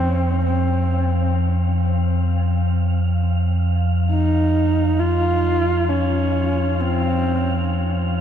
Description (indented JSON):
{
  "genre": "dark ambient drone",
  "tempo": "free time",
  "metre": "none",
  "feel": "none",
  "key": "unclear",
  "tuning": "A4 = 440 Hz",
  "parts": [
    { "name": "dark horsehead fiddle", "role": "melody", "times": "0.0-7.7 s", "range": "C4 to F4", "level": "-22 LUFS", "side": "right 1 dB", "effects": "ping-pong delay" },
    { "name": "dark detuned synth bell", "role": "arpeggios", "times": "0.0-8.2 s", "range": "none", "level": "barely audible", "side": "none", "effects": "none" },
    { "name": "deep rumbling drone", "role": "drone", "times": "0.0-8.2 s", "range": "F2 to F3", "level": "-19 LUFS", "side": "equal", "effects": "built-in reverb, ensemble chorus" },
    { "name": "wind-like tuned noise texture", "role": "texture", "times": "0.0-8.2 s", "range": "F5", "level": "-33 LUFS", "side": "equal", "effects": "built-in reverb, wide subtle chorus" }
  ],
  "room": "moderate huge ambient reverb, RT60 9.0 s",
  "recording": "dreamy mix soaked in reverb",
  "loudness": "-17 LUFS",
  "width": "side -9 dB against mid",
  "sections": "0.0-8.2 A section",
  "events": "fade-in on synth texture 0.0-8.2",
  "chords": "0.0 F5"
}